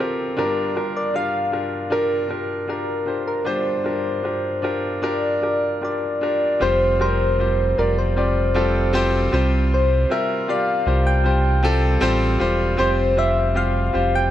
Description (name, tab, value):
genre	pop ballad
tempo	78 BPM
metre	4/4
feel	straight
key	unclear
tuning	A4 = 442 Hz
part	clear grand piano	accompaniment	0.0-14.3 s	G1 to D5	-22 LUFS	left 1 dB	none
part	soft struck synth lead	melody	0.4-14.3 s	Bb4 to G5	-23 LUFS	left 1 dB	chorus
part	sub bass with octave	bass	6.6-14.3 s	E1 to C2	-20 LUFS	right 1 dB	none
room	light reverb, studio reverb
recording	none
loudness	-18 LUFS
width	side -12 dB against mid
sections	0.0-6.6 A section; 6.6-14.3 B section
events	none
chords	0.4 Gm7; 6.6 Fsus2; 9.3 Csus4; 12.8 Fsus2